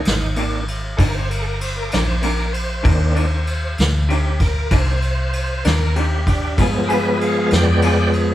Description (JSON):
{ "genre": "slow blues", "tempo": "64 BPM (dotted quarters)", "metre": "12/8", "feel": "straight", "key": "C minor", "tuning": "A4 = 441 Hz", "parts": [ { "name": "bright tonewheel organ", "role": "sustained chords", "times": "0.0-8.3 s", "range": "Eb3 to G5", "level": "-22 LUFS", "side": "equal", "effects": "slow rotary speaker, chorus vibrato" }, { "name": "vintage muted fingered electric bass", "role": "bass", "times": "0.0-8.3 s", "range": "G1 to G2", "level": "-20 LUFS", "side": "equal", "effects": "none" }, { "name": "vintage brush drum kit", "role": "drums", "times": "0.1-8.3 s", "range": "kick drum, ride cymbal, snare drum", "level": "-21 LUFS", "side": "equal", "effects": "none" }, { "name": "electric guitar through a small old amp", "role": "accompaniment", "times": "0.4-8.0 s", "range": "C3 to Ab4", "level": "-24 LUFS", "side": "left 1 dB", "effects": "tremolo" } ], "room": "light reverb", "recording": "band playing live in one room", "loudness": "-16 LUFS", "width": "side -13 dB against mid", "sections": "0.0-8.3 A section", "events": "tonewheel organ solo 0.0-8.3", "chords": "0.0 Cm9; 6.6 G7b9" }